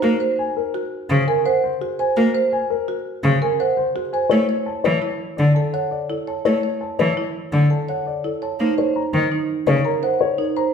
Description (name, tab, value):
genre	classical, minimalist pattern music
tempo	168 BPM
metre	6/4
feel	straight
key	unclear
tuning	A4 = 439 Hz
part	dark concert grand piano	melody	0.0-10.7 s	Ab4 to Bb5	-23 LUFS	left 8 dB	none
part	warm cello	accompaniment	0.0-9.8 s	Db3 to Bb3	-20 LUFS	left 1 dB	none
part	marimba with soft mallets	arpeggios	0.0-10.7 s	Eb4 to Db5	-23 LUFS	right 6 dB	none
room	wet large studio reverb, RT60 1.4 s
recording	heard from further back in the room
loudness	-18 LUFS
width	side -6 dB against mid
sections	0.0-10.7 A section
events	none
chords	0.0 Gbadd9; 4.3 Dsus2; 8.6 Eb7(no3)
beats	| 0.03 0.38 0.74 1.10 1.46 1.81 | 2.17 2.53 2.88 3.24 3.60 3.96 | 4.31 4.67 5.03 5.38 5.74 6.10 | 6.46 6.81 7.17 7.53 7.88 8.24 | 8.60 8.96 9.31 9.67 10.03 10.38